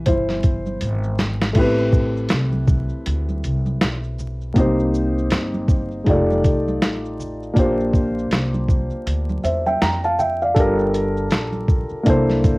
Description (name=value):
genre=hip hop, jazz-hop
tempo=80 BPM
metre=4/4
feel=swing 60% on 16ths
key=unclear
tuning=A4 = 440 Hz
part: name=dark baby grand piano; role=accompaniment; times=0.0-12.6 s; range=B2 to Bb5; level=-21 LUFS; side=equal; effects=cassette tape
part: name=upright bass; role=bass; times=0.0-12.6 s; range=F1 to F2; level=-24 LUFS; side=equal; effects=none
part: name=boom bap sampler-style drum kit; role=drums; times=0.1-12.6 s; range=crash cymbal, hi-hat, kick drum, shaker, snare drum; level=-19 LUFS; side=equal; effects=none
part: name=congas and maracas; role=percussion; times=0.1-12.6 s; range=none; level=-32 LUFS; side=right 2 dB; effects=none
room=light reverb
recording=home recording on cassette, vinyl crackle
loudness=-17 LUFS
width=side -23 dB against mid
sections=0.0-1.6 A section; 1.6-12.6 B section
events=grand piano solo 0.0-1.6; drum fill 0.8-1.6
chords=0.0 Cmaj7; 1.6 Am9; 4.6 Cm7; 6.1 F13; 7.6 Bb69; 10.6 Gm9; 12.1 C13